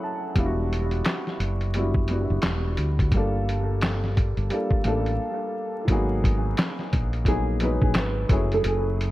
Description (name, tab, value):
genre	lo-fi hip hop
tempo	87 BPM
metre	4/4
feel	swing 61% on 16ths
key	unclear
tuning	A4 = 438 Hz
part	warm upright piano	accompaniment	0.0-9.1 s	F#3 to A5	-28 LUFS	equal	low-pass filter, analog delay
part	fingered electric bass	bass	0.4-9.1 s	E1 to D2	-26 LUFS	equal	none
part	lo-fi sampler-style drum kit	drums	0.4-9.1 s	handclaps, hi-hat, kick drum, snare drum	-24 LUFS	equal	vintage 12-bit sampler grit
part	nylon-string guitar	melody	5.8-9.1 s	F4 to B4	-30 LUFS	right 2 dB	low-pass filter, analog delay
room	light reverb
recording	echo-heavy mix, vinyl crackle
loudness	-22 LUFS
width	side -16 dB against mid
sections	0.0-5.9 A section; 5.9-9.1 B section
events	break 5.2-5.9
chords	0.4 Em9; 3.1 Gm9; 5.9 G#m9; 8.3 F#m9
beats	| 0.36 1.05 1.74 2.43 | 3.12 3.81 4.50 5.19 | 5.88 6.57 7.25 7.94 | 8.63